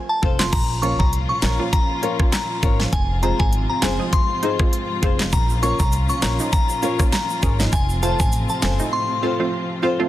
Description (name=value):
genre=dancehall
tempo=100 BPM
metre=4/4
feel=swing 56% on 16ths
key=Bb minor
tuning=A4 = 440 Hz
part: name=glassy synth bell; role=melody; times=0.1-9.4 s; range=Ab5 to Db6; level=-25 LUFS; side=left 1 dB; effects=chorus, tape echo
part: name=hollow square pluck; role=accompaniment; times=0.2-10.1 s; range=F3 to Ab4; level=-27 LUFS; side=right 4 dB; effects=chorus
part: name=flamenco guitar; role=arpeggios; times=0.2-10.0 s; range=F4 to Db5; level=-28 LUFS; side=left 7 dB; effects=none
part: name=upright bass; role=bass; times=0.2-8.8 s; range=F1 to C2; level=-23 LUFS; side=equal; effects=none
part: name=pop drum kit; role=drums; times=0.2-8.8 s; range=crash cymbal, handclaps, hi-hat, kick drum, rim click, snare drum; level=-20 LUFS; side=equal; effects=none
part: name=warm symphonic string section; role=sustained chords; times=0.5-10.1 s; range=Ab2 to F4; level=-28 LUFS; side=left 1 dB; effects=sidechain pumping
part: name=tube shaker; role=percussion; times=5.3-8.9 s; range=none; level=-34 LUFS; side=right 3 dB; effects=none
room=light reverb, small room ambience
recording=dense, heavily limited modern master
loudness=-17 LUFS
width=side -14 dB against mid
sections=0.5-10.1 A section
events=none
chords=0.0 F; 0.5 Bbm; 2.9 Fm; 5.3 Bbm; 7.7 F